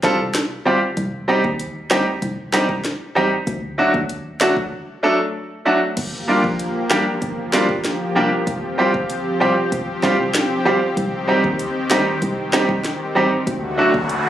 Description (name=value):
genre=dancehall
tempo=96 BPM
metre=4/4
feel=straight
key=G minor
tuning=A4 = 440 Hz
part: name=bright concert grand piano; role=accompaniment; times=0.0-13.9 s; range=F#3 to A4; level=-18 LUFS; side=right 1 dB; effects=none
part: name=organ-like FM bass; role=bass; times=0.0-14.2 s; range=F1 to Eb2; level=-28 LUFS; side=equal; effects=none
part: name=afro-pop drum kit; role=drums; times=0.0-14.2 s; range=crash cymbal, hi-hat, kick drum, snare drum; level=-24 LUFS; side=equal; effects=none
part: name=lush unison pad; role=sustained chords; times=6.0-14.3 s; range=D3 to G4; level=-23 LUFS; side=left 1 dB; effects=chorus, sidechain pumping
part: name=noise sweep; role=sound effects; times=13.7-14.3 s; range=none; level=-24 LUFS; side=equal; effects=none
room=light reverb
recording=recorded on a phone in the room, club reverb, compression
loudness=-17 LUFS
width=side -11 dB against mid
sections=0.0-6.0 A section; 6.0-14.3 B section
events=silent gap 4.7-6.0; noise sweep 13.7-14.3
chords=0.0 Fsus2; 1.0 Cm; 3.5 D; 6.0 Gm7; 8.5 Fsus2; 11.0 Cm; 13.5 D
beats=0.35 | 0.97 1.60 2.22 2.85 | 3.47 4.10 4.72 5.35 | 5.97 6.60 7.22 7.85 | 8.47 9.10 9.72 10.35 | 10.97 11.60 12.22 12.85 | 13.47 14.10